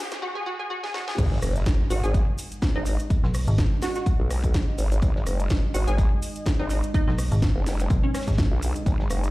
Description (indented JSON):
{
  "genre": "bass house",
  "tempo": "125 BPM",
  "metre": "4/4",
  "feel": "swing 55% on 16ths",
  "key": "G# minor",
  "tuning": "A4 = 435 Hz",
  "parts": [
    { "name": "dark analog pad", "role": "sustained chords", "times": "2.0-9.3 s", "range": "G#3 to G#5", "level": "-37 LUFS", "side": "right 1 dB", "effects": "chorus, sidechain pumping" },
    { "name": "riser and impact", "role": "sound effects", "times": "0.0-3.1 s", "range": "none", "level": "-32 LUFS", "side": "equal", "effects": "none" },
    { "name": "house drum kit", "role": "drums", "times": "0.1-9.3 s", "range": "crash cymbal, hi-hat, rim click, snare drum", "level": "-34 LUFS", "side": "equal", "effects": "overdrive, high-pass filter on snare, high-pass filter on hats, high-pass filter on cymbals, high-pass filter on room" },
    { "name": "warm soul drum kit", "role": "drums", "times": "0.1-9.2 s", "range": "hi-hat, snare drum", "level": "-46 LUFS", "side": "equal", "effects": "none" },
    { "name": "tube shaker", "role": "percussion", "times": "0.1-9.3 s", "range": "none", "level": "-42 LUFS", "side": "right 2 dB", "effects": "none" },
    { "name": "hollow square pluck", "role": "melody", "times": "0.2-8.2 s", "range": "C#4 to G#4", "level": "-32 LUFS", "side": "right 1 dB", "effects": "ensemble chorus, dub echo" },
    { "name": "vowel-sweep wobble bass", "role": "bass", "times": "1.2-9.3 s", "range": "F#1 to B1", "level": "-24 LUFS", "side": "equal", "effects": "chorus, overdrive, sidechain pumping" },
    { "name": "electronic kick drum", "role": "drums", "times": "1.2-9.0 s", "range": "none", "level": "-22 LUFS", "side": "equal", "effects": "high-pass filter on kick, high-pass filter on room" },
    { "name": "metallic FM bass", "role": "bass", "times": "3.2-3.7, 7.1-8.5 s", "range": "G#1 to B1", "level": "-23 LUFS", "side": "equal", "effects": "tube saturation, sidechain pumping" }
  ],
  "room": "digital ambience",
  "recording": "played on a big sound system in a bare room, large studio reverb, high-pass filter",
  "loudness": "-22 LUFS",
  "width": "side -19 dB against mid",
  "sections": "0.0-1.2 A section; 1.2-9.3 B section",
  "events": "build-up 0.0-1.2; drum fill 0.0, 0.8-1.2; riser 0.0; drop 1.2-9.3; impact 1.2-3.1",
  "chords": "0.0 G#5"
}